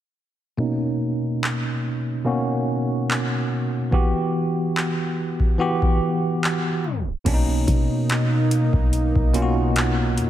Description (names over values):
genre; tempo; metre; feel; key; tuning
contemporary R&B; 72 BPM; 4/4; swing 54% on 16ths; B major; A4 = 440 Hz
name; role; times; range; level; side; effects
bell-like tine electric piano; accompaniment; 0.6-10.3 s; B2 to G4; -22 LUFS; equal; medium stereo tremolo, low-pass filter
booming analog drum machine; drums; 1.4-10.3 s; crash cymbal, handclaps, hi-hat, kick drum; -24 LUFS; equal; none
warm analog pad; sustained chords; 7.3-10.3 s; B2 to D#4; -26 LUFS; right 1 dB; chorus
clean 808-style bass; bass; 7.3-10.3 s; B1 to B2; -23 LUFS; equal; none
room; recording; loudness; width
moderate lush hall reverb, RT60 2.6 s; dreamy mix soaked in reverb, tape stop; -20 LUFS; side -12 dB against mid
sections
0.6-7.3 A section; 7.3-10.3 B section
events
filter sweep on tine electric piano 0.6-7.3; tape stop 6.8-7.3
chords
0.6 Bmaj9; 3.9 Emadd9; 7.3 Bmaj9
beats
| 0.59 1.43 2.26 3.09 | 3.93 4.76 5.59 6.43 | 7.26 8.09 8.93 9.76